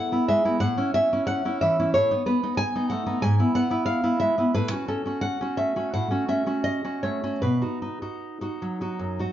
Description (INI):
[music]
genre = romantic piece for solo classical guitar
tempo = 74-93 BPM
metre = 4/4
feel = rubato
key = unclear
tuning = A4 = 440 Hz
[part]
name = nylon-string guitar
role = solo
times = 0.0-9.3 s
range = F#2 to G#5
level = -22 LUFS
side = equal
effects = none
[sound]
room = moderate large studio reverb, RT60 0.9 s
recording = band playing live in one room, nothing above 7.5 kHz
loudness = -22 LUFS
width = side -11 dB against mid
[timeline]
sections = 0.0-9.3 A section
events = none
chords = 0.0 E; 0.6 A6 (rootless); 1.9 B7/A; 3.2 E/G#; 4.5 F#m/A; 7.4 B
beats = 0.59 1.26 | 1.93 2.58 3.23 3.88 | 4.55 5.23 5.93 6.66 | 7.42 8.23 9.01